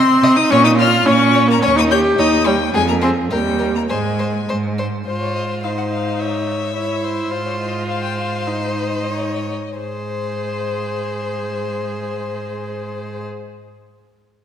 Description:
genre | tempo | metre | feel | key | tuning
quick classical-period movement for string quartet | 87-108 BPM | 2/4 | straight | Ab major | A4 = 442 Hz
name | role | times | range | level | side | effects
warm violin | melody | 0.0-13.2 s | C5 to G6 | -22 LUFS | left 8 dB | none
clear violin | second line | 0.0-13.2 s | Ab4 to Eb5 | -24 LUFS | left 3 dB | none
rich viola | accompaniment | 0.0-13.2 s | G3 to Ab4 | -20 LUFS | right 1 dB | none
rich cello | bass | 0.0-13.2 s | Eb2 to C3 | -22 LUFS | right 3 dB | none
room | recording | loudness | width
wet concert hall reverb, RT60 1.7 s | none | -16 LUFS | side -8 dB against mid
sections
0.0-5.1 A section; 5.1-9.8 B section; 9.8-12.5 C section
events
slowing down 6.7-9.8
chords
0.0 Cm; 0.5 Bbm; 1.6 Eb7; 2.7 Fm; 3.3 Eb; 3.9 Ab; 6.2 Dbm/Ab; 7.3 Ab; 8.5 Abadd11; 9.8 Ab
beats
| 0.51 1.07 | 1.63 2.18 | 2.75 3.32 | 3.90 4.49 | 5.07 5.63 | 6.19 6.75 | 7.31 7.88 | 8.47 9.11 | 9.78 10.46 | 11.14 11.83

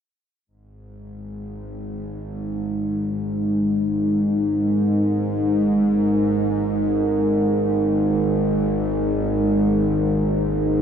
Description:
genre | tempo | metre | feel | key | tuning
dark ambient drone | free time | none | none | unclear | A4 = 437 Hz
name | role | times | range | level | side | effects
deep dark ambient pad | sustained chords | 1.3-10.8 s | G#3 to A#4 | -22 LUFS | equal | chorus, built-in reverb
bowed-like drone | drone | 1.2-10.8 s | G#1 to G#2 | -22 LUFS | equal | built-in reverb
room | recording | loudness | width
wet cathedral reverb, RT60 6.9 s | none | -18 LUFS | side -8 dB against mid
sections
0.5-10.8 A section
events
none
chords
0.5 G#5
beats
free time

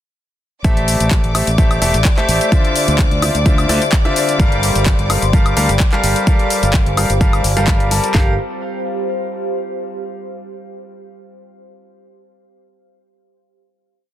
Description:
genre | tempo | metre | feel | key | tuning
piano house | 128 BPM | 4/4 | straight | G dorian | A4 = 439 Hz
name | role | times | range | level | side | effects
dark studio violin section | sustained chords | 0.6-8.2 s | D5 to D6 | -24 LUFS | left 1 dB | sidechain pumping
bright grand piano | riff | 0.6-8.3 s | D3 to A5 | -19 LUFS | left 1 dB | sidechain pumping, tape echo
growling fingered electric bass | bass | 0.6-8.4 s | E1 to D2 | -18 LUFS | equal | overdrive, sidechain pumping
house drum kit | drums | 0.6-8.3 s | handclaps, kick drum, snare drum | -14 LUFS | equal | overdrive, studio ambience
house drum kit | drums | 0.6-8.1 s | handclaps, hi-hat, shaker, woodblock | -21 LUFS | left 2 dB | overdrive, studio ambience
deep dark ambient pad | texture | 1.6-10.0 s | G4 to F5 | -25 LUFS | left 1 dB | chorus, built-in reverb, sidechain pumping
room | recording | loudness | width
little or no reverb | dense, heavily limited modern master | -13 LUFS | side -12 dB against mid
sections
0.6-8.1 drop; 8.1-10.0 final chord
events
drop 0.6-8.1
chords
0.6 Am7; 2.5 Dm9; 4.4 Gm9; 8.1 G7(no3)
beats
| 0.65 1.11 1.58 2.05 | 2.52 2.99 3.46 3.93 | 4.39 4.86 5.33 5.80 | 6.27 6.74 7.21 7.68 | 8.14 8.61 9.08 9.55

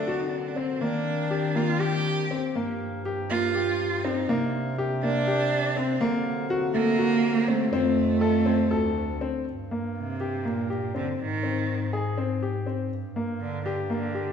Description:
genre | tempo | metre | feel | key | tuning
contemporary instrumental, chamber music in an uneven meter | 244 BPM (eighths) | 7/8 | straight | G phrygian from 9.5 s | A4 = 440 Hz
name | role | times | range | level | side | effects
rich cello | melody | 0.0-14.3 s | Bb2 to G4 | -27 LUFS | right 4 dB | none
mellow French horn section | sustained chords | 0.0-9.5 s | C3 to G4 | -36 LUFS | left 1 dB | none
clear concert grand piano | arpeggios | 0.0-14.3 s | A3 to A4 | -28 LUFS | left 3 dB | none
mellow bass clarinet | bass | 0.0-14.3 s | D2 to Eb3 | -31 LUFS | left 2 dB | none
room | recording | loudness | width
wet scoring stage reverb, RT60 1.8 s | recorded in a church or concert hall | -24 LUFS | side -7 dB against mid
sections
0.0-9.5 A section; 9.5-14.3 B section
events
none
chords
0.0 D7b13; 0.8 Cm9/Eb; 2.5 Gm7; 4.3 Csus2; 6.0 D7b13; 7.7 F7; 8.7 D7; 9.5 Gm; 11.2 Abmaj7; 12.9 Gm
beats
0.07 0.32 0.57 | 0.81 1.06 1.30 1.55 1.80 2.05 2.30 | 2.55 2.80 3.05 3.30 3.54 3.79 4.04 | 4.28 4.53 4.77 5.02 5.26 5.51 5.75 | 6.00 6.24 6.49 6.74 6.98 7.23 7.47 | 7.72 7.97 8.21 8.46 8.71 8.96 9.21 | 9.46 9.71 9.96 10.21 10.45 10.70 10.95 | 11.19 11.44 11.68 11.93 12.17 12.41 12.66 | 12.91 13.15 13.40 13.65 13.89 14.14

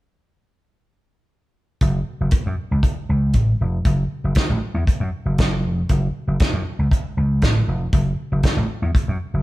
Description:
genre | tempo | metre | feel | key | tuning
disco | 118 BPM | 4/4 | straight | F# minor | A4 = 440 Hz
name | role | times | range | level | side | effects
vintage slap bass | bass | 1.8-9.4 s | E#1 to F#2 | -20 LUFS | equal | none
warm soul drum kit | drums | 1.8-9.1 s | hi-hat, kick drum, snare drum | -20 LUFS | equal | none
room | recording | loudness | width
moderate stone room reverb, RT60 1.2 s | band playing live in one room | -18 LUFS | side -18 dB against mid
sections
1.8-9.4 A section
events
none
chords
none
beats
| 1.81 2.32 2.83 3.34 | 3.85 4.36 4.87 5.38 | 5.89 6.40 6.91 7.42 | 7.93 8.44 8.95

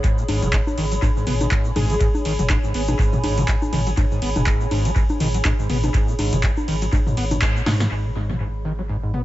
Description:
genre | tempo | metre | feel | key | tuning
acid house | 122 BPM | 4/4 | swing 57% on 16ths | G# minor | A4 = 441 Hz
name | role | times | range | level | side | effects
overdriven acid bass | riff | 0.0-9.2 s | G#2 to B3 | -25 LUFS | equal | distortion, analog chorus, analog delay
electro analog drum machine | drums | 0.0-9.2 s | congas, handclaps, hi-hat, ride cymbal, snare drum, toms | -24 LUFS | left 1 dB | analog delay
electronic kick drum | drums | 0.0-7.5 s | none | -21 LUFS | equal | none
egg shaker | percussion | 0.0-7.9 s | none | -40 LUFS | left 2 dB | none
warbly tape-like pad | texture | 0.0-9.2 s | G#4 to B5 | -29 LUFS | right 1 dB | chorus, built-in reverb, sidechain pumping
saturated sub bass | bass | 0.3-9.2 s | F#1 to G#2 | -25 LUFS | equal | sidechain pumping
plucky unison lead | melody | 1.8-2.2 s | G#4 | -30 LUFS | left 1 dB | vintage 12-bit sampler grit, analog delay
room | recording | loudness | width
little or no reverb | echo-heavy mix, nothing above 7.8 kHz | -18 LUFS | side -15 dB against mid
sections
0.0-7.9 A section; 7.9-9.2 B section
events
drop 0.0-7.9; band accent 7.4; drum fill 7.7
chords
0.0 G#m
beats
| 0.04 0.53 1.02 1.51 | 2.01 2.50 2.99 3.48 | 3.97 4.47 4.96 5.45 | 5.94 6.43 6.92 7.42 | 7.91 8.40 8.89

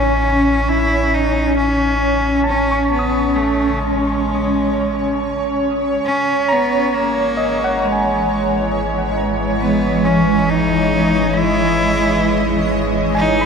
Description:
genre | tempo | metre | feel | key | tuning
ambient | 67 BPM | 4/4 | straight | unclear | A4 = 444 Hz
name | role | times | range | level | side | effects
rich cello | melody | 0.0-13.5 s | G#3 to E4 | -20 LUFS | equal | shimmer reverb, ping-pong delay
granular cloud pad | sustained chords | 0.0-13.5 s | E3 to D#5 | -17 LUFS | equal | built-in reverb, shimmer reverb
overdriven tine electric piano | arpeggios | 0.0-13.5 s | D#5 to D#6 | -25 LUFS | equal | medium tremolo, shimmer reverb, ping-pong delay
warm sub bass | bass | 0.0-13.5 s | G#1 to A1 | -25 LUFS | equal | none
room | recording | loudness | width
wet huge ambient reverb, RT60 7.9 s | none | -14 LUFS | side -6 dB against mid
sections
0.0-13.5 A section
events
fade-out on sub bass 0.0-13.5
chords
0.0 Amaj7; 6.0 Emaj7/G#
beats
0.67 1.56 | 2.45 3.34 4.23 5.14 | 6.04 6.94 7.83 8.73 | 9.62 10.50 11.39 12.27 | 13.15

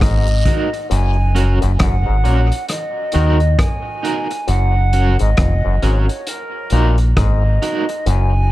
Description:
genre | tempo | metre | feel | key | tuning
dub reggae | 67 BPM | 4/4 | swing 61% on 16ths | unclear | A4 = 438 Hz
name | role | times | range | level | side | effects
mellow hollow silver concert flute | melody | 0.0-8.5 s | A#4 to G#5 | -24 LUFS | right 1 dB | tape echo
overdriven clav | riff | 0.0-8.3 s | E#2 to D#3 | -28 LUFS | left 11 dB | auto-wah, tape echo
deep dub fingered electric bass | bass | 0.0-8.5 s | E#1 to D#2 | -14 LUFS | equal | none
vintage drum kit | drums | 0.0-8.3 s | hi-hat, kick drum, rim click | -20 LUFS | equal | none
guiro and cabasa | percussion | 0.0-0.7 s | none | -34 LUFS | right 3 dB | tape echo
electric guitar at the edge of break-up | accompaniment | 0.5-7.9 s | C#4 to A#4 | -24 LUFS | right 3 dB | tremolo, tape echo
room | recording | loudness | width
little or no reverb | none | -14 LUFS | side -16 dB against mid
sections
0.0-8.5 A section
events
part muted 0.9-8.5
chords
0.0 D#m; 0.9 F#; 2.7 D#m; 4.5 F#; 6.3 D#m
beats
0.01 | 0.91 1.80 2.69 3.59 | 4.48 5.38 6.27 7.16 | 8.06

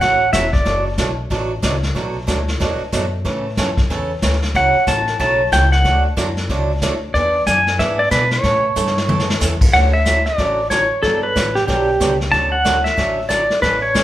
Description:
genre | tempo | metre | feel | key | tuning
country, western swing | 185 BPM | 4/4 | swing 62% on 8ths | D major | A4 = 439 Hz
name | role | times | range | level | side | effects
pedal steel guitar | melody | 0.0-0.8, 4.6-14.0 s | G4 to A5 | -16 LUFS | equal | none
picked swing-style acoustic guitar | accompaniment | 0.0-14.0 s | B2 to A4 | -23 LUFS | right 2 dB | none
upright bass | bass | 0.0-14.0 s | E1 to B2 | -21 LUFS | equal | none
vintage brush drum kit | drums | 0.0-14.0 s | brushed snare drum, crash cymbal, hi-hat, kick drum, snare drum, toms | -21 LUFS | equal | none
room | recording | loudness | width
wet large studio reverb, RT60 0.8 s | band playing live in one room | -14 LUFS | side -13 dB against mid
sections
0.0-9.7 A section; 9.7-14.0 B section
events
drum fill 8.8-9.4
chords
0.0 F#m; 0.7 D6/F#; 2.0 Bm7; 3.3 A; 4.5 F#m; 5.8 D; 7.1 E7; 8.4 A; 9.7 Dmaj7; 11.0 Gmaj7; 12.3 Dmaj7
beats
0.01 0.33 | 0.66 0.98 1.31 1.63 | 1.96 2.28 2.60 2.93 | 3.25 3.58 3.90 4.22 | 4.55 4.87 5.20 5.52 | 5.84 6.17 6.49 6.82 | 7.14 7.47 7.79 8.11 | 8.44 8.76 9.09 9.41 | 9.74 10.06 10.38 10.71 | 11.03 11.36 11.68 12.01 | 12.33 12.65 12.98 13.30 | 13.62 13.95

